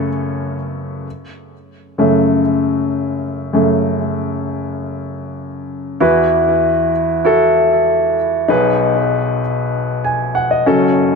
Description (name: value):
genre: pop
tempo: 97 BPM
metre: 4/4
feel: straight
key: unclear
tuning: A4 = 440 Hz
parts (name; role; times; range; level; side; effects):
- clear baby grand piano; solo; 0.0-11.2 s; F#1 to G#5; -14 LUFS; left 1 dB; digital delay
room: light reverb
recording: none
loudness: -13 LUFS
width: side -4 dB against mid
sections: 0.0-1.1 A section; 1.1-6.0 B section; 6.0-11.2 C section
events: grand piano solo 0.0-1.1, 1.1-6.0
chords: 0.0 F#m; 6.0 Esus2; 8.5 B6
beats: 0.44 | 1.05 1.67 2.29 2.91 | 3.53 4.15 4.77 5.39 | 6.01 6.63 7.25 7.87 | 8.49 9.11 9.73 10.35 | 10.97